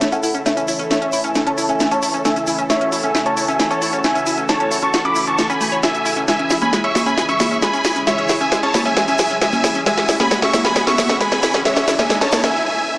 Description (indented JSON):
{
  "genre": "uplifting trance",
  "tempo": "134 BPM",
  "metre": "4/4",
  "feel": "straight",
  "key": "A major",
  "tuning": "A4 = 440 Hz",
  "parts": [
    { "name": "big supersaw lead", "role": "melody", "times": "0.0-12.9 s", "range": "A4 to D6", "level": "-19 LUFS", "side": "equal", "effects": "low-pass filter, dub echo" },
    { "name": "dark grand piano", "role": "second line", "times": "0.0-12.5 s", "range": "E5 to D6", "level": "-24 LUFS", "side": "equal", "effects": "low-pass filter, dub echo" },
    { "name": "lush unison pad", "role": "sustained chords", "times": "0.0-12.5 s", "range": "C#3 to A4", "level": "-25 LUFS", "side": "equal", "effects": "chorus" },
    { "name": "analog pluck", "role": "arpeggios", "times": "0.0-12.5 s", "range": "G#3 to E5", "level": "-24 LUFS", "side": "equal", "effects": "chorus, dub echo" },
    { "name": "techno drum kit", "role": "drums", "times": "0.0-12.5 s", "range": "congas, hi-hat, snare drum", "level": "-19 LUFS", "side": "equal", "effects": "overdrive" },
    { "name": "tube shaker", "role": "percussion", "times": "0.0-12.5 s", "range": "none", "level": "-30 LUFS", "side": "equal", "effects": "none" },
    { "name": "riser", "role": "sound effects", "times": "9.1-12.5 s", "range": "none", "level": "-28 LUFS", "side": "equal", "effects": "none" }
  ],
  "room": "moderate huge ambient reverb, RT60 4.9 s",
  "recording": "small speaker sound",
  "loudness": "-14 LUFS",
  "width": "side -21 dB against mid",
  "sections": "0.0-13.0 A section",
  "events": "build-up 0.0-13.0; drum fill 0.0-12.5; filter sweep on supersaw synth 0.0-13.0; filter sweep on grand piano 0.0-13.0; riser 9.1-12.5; break 12.5-13.0",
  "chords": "0.0 A; 6.3 C#m"
}